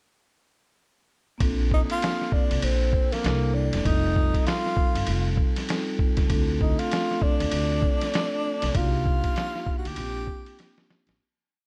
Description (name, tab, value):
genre	hip hop, jazz-hop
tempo	98 BPM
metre	4/4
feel	swing 60% on 16ths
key	Bb major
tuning	A4 = 440 Hz
part	vibraphone with soft mallets	accompaniment	1.4-11.2 s	G3 to A4	-33 LUFS	equal	none
part	upright bass	bass	1.4-11.2 s	E1 to Eb2	-29 LUFS	equal	none
part	lo-fi sampler-style drum kit	drums	1.4-11.2 s	hi-hat, kick drum, ride cymbal, snare drum	-28 LUFS	equal	none
part	breathy tenor saxophone	melody	1.7-10.9 s	Bb3 to G4	-31 LUFS	equal	slapback echo
room	studio ambience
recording	none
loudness	-25 LUFS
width	mono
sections	1.4-11.2 A section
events	fade-out 8.8-11.2; drum fill 10.6-11.2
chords	1.4 Bbmaj7; 3.2 C13; 3.9 F9; 6.3 Dm7; 8.8 Cm11; 10.0 Bb69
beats	| 1.40 2.02 2.63 3.24 | 3.85 4.47 5.08 5.69 | 6.30 6.91 7.53 8.14 | 8.75 9.36 9.98 10.59